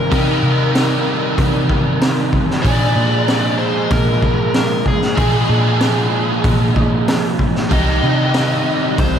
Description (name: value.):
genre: rock, shoegaze and dream pop.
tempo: 95 BPM.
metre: 4/4.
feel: straight.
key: unclear.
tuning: A4 = 440 Hz.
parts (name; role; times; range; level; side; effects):
nasal lead guitar with a parked wah; melody; 0.0-9.2 s; Ab4 to Eb5; -23 LUFS; left 2 dB; overdrive, analog delay.
overdriven electric guitar; riff; 0.0-9.2 s; Bb2 to Ab4; -17 LUFS; right 1 dB; analog chorus.
vintage muted picked electric bass; bass; 0.0-9.2 s; C2 to C3; -19 LUFS; equal; none.
raw garage drum kit; drums; 0.1-9.1 s; hi-hat, kick drum, snare drum; -19 LUFS; equal; none.
room: moderate plate reverb, RT60 1.5 s, small room ambience.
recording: dreamy mix soaked in reverb.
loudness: -13 LUFS.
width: side -8 dB against mid.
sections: 0.0-9.2 A section.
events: none.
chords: 0.0 Cm; 2.6 Bb7; 7.7 Cm.